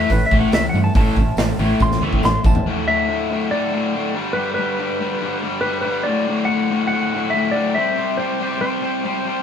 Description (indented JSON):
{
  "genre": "classic rock",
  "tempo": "141 BPM",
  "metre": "4/4",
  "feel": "straight",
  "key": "D mixolydian",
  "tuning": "A4 = 438 Hz",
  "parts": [
    { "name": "clean lap steel guitar", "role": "melody", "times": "0.0-9.2 s", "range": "B4 to C6", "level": "-22 LUFS", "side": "left 1 dB", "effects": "none" },
    { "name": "picked steel-string acoustic guitar", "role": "accompaniment", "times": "0.0-2.7 s", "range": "A2 to E4", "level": "-32 LUFS", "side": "right 6 dB", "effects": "none" },
    { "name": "tack piano", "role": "accompaniment", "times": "0.0-2.6 s", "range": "C#4 to A4", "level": "-34 LUFS", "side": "right 2 dB", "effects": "none" },
    { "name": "biting overdriven guitar", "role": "riff", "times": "0.0-9.4 s", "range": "D2 to C4", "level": "-21 LUFS", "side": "left 3 dB", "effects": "none" },
    { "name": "biting overdriven guitar", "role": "riff", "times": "0.0-2.6 s", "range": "A2 to A3", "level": "-25 LUFS", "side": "right 3 dB", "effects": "phaser" },
    { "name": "growling fingered electric bass", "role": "bass", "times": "0.0-2.6 s", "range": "A1 to G2", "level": "-22 LUFS", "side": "equal", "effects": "overdrive" },
    { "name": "big rock drum kit", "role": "drums", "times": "0.1-2.7 s", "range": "hi-hat, kick drum, snare drum, toms", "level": "-20 LUFS", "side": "right 1 dB", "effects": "none" },
    { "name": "tambourine", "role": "percussion", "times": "0.1-2.5 s", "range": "none", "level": "-46 LUFS", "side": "right 7 dB", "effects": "none" }
  ],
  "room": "moderate stone room reverb, RT60 1.0 s",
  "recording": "band playing live in one room",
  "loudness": "-17 LUFS",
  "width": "side -8 dB against mid",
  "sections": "0.0-2.7 A section; 2.7-9.4 B section",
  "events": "electric slide guitar solo 0.0-2.7; drum fill 1.8-2.7",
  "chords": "0.0 A; 2.7 D5; 4.2 G; 6.1 D; 7.8 C"
}